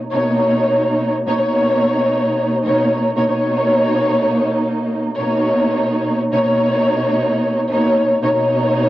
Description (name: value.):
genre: hip hop.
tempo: 95 BPM.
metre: 4/4.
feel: swing 62% on 16ths.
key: B major.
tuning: A4 = 441 Hz.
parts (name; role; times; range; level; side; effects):
dark studio string section; solo; 0.1-8.9 s; B2 to C#5; -14 LUFS; equal; high-pass filter, low-pass filter.
room: light reverb, small room ambience.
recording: dry, gritty hardware recording.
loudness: -14 LUFS.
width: side -15 dB against mid.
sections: 0.0-8.9 A section.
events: none.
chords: 0.0 Bmaj9.